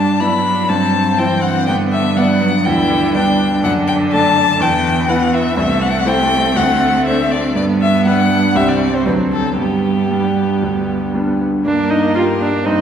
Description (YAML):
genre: quick classical-period movement for piano quartet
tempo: 121 BPM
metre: 4/4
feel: rubato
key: G major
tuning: A4 = 441 Hz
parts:
  - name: warm violin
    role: melody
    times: 0.0-12.8 s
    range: G4 to B5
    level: -18 LUFS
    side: left 4 dB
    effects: none
  - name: clear cello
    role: second line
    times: 0.0-12.8 s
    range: D3 to C4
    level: -20 LUFS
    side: right 4 dB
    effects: none
  - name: bright grand piano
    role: accompaniment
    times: 0.0-12.8 s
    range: C2 to D5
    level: -18 LUFS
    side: equal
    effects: none
  - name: rich viola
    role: accompaniment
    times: 0.0-12.8 s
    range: B3 to F4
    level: -20 LUFS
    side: right 2 dB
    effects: none
room: wet concert hall reverb, RT60 2.2 s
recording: recorded in a church or concert hall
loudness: -13 LUFS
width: side -8 dB against mid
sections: 0.0-11.7 A section; 11.7-12.8 B section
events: none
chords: 0.0 G; 0.7 C/G; 1.7 G; 3.6 D/F#; 4.6 Em; 5.6 Am/C; 6.6 D7; 7.6 G; 8.6 C5; 9.1 D7; 9.6 G; 11.7 Gm